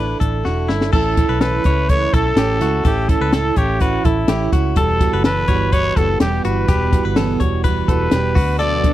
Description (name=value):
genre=jangly indie pop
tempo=125 BPM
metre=4/4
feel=straight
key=unclear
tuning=A4 = 440 Hz
part: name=growling trumpet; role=melody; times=0.0-8.9 s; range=D4 to D5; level=-20 LUFS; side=equal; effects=slapback echo
part: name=picked plugged-in steel-string acoustic guitar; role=accompaniment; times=0.0-8.9 s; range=E2 to F#4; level=-22 LUFS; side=right 9 dB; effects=none
part: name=direct-recorded clean electric guitar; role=arpeggios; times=0.0-8.9 s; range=E4 to C#5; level=-25 LUFS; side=left 6 dB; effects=slapback echo
part: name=vintage muted fingered electric bass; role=bass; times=0.0-8.9 s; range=E1 to D2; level=-21 LUFS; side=equal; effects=none
part: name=compact cocktail drum kit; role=drums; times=0.2-8.9 s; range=crash cymbal, hi-hat, kick drum, snare drum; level=-18 LUFS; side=left 1 dB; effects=none
part: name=string machine, full ensemble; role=sustained chords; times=8.6-8.9 s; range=B2 to F#4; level=-22 LUFS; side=equal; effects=ensemble chorus
room=little or no reverb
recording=dry, close 1970s-style studio recording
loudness=-14 LUFS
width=side -14 dB against mid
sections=0.9-8.9 A section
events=drum fill 0.5-0.9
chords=0.0 Asus4; 0.9 A; 4.8 Emadd9; 8.4 Bm